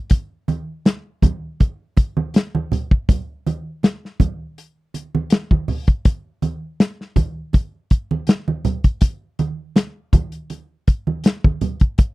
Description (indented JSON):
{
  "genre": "soul",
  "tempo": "81 BPM",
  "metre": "4/4",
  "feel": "swing 54% on 16ths",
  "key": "none",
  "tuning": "none",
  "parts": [
    { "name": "warm soul drum kit", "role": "drums", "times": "0.1-12.1 s", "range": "hi-hat, kick drum, snare drum", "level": "-14 LUFS", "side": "left 1 dB", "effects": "none" },
    { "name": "congas", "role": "percussion", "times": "0.1-11.8 s", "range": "none", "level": "-22 LUFS", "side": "right 3 dB", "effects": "none" }
  ],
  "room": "little or no reverb",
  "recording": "dry, close 1970s-style studio recording",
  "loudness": "-18 LUFS",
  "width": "side -19 dB against mid",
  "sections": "0.0-12.1 A section",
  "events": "none",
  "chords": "none",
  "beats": "| 0.11 0.85 1.60 2.34 | 3.08 3.83 4.57 5.31 | 6.05 6.80 7.54 8.28 | 9.03 9.77 10.51 11.25 | 11.99"
}